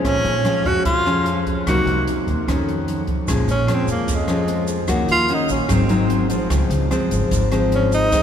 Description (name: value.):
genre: bossa nova.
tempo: 149 BPM.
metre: 4/4.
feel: straight.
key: Bb minor.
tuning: A4 = 440 Hz.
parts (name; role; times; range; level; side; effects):
nylon-string guitar; accompaniment; 0.0-8.2 s; F2 to Gb4; -21 LUFS; left 2 dB; none.
upright bass; bass; 0.0-8.2 s; Ab1 to F2; -23 LUFS; equal; none.
open jazz drum kit; drums; 0.0-8.2 s; hi-hat, kick drum, rim click; -27 LUFS; right 1 dB; none.
breathy tenor saxophone; melody; 0.1-8.2 s; Ab3 to Gb4; -22 LUFS; right 1 dB; none.
tube shaker; percussion; 3.3-8.2 s; none; -36 LUFS; right 6 dB; none.
room: wet cathedral reverb, RT60 5.6 s.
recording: recorded in a church or concert hall.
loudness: -17 LUFS.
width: side -9 dB against mid.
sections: 0.0-3.3 A section; 3.3-8.2 B section.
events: tenor saxophone solo 3.3-8.2.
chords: 0.0 Bbm7; 1.7 Cm7b5; 2.5 F7b13; 3.3 Bbm7; 4.9 Ebm7; 5.7 Ab7; 6.5 Dbmaj7.